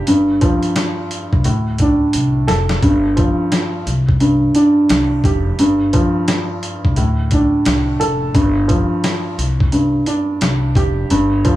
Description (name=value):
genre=hip hop, boom-bap hip-hop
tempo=87 BPM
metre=4/4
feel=swing 61% on 16ths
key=unclear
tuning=A4 = 440 Hz
part: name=dark upright piano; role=accompaniment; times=0.0-11.6 s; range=G2 to A4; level=-16 LUFS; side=equal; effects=cassette tape, high-pass filter, low-pass filter
part: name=upright bass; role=bass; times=0.1-11.6 s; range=F1 to D2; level=-20 LUFS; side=equal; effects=none
part: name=dusty soul sampler-style drum kit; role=drums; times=0.1-11.6 s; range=hi-hat, kick drum, snare drum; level=-18 LUFS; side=equal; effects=none
room=small room ambience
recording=none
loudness=-13 LUFS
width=side -15 dB against mid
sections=0.0-11.6 A section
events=drum fill 2.1-2.8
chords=0.1 G7(no3); 1.4 Dm7; 2.8 Fsus2/G; 3.9 Csus2; 5.6 G7(no3); 7.0 Dm7; 8.3 Fsus2/G; 9.4 Csus2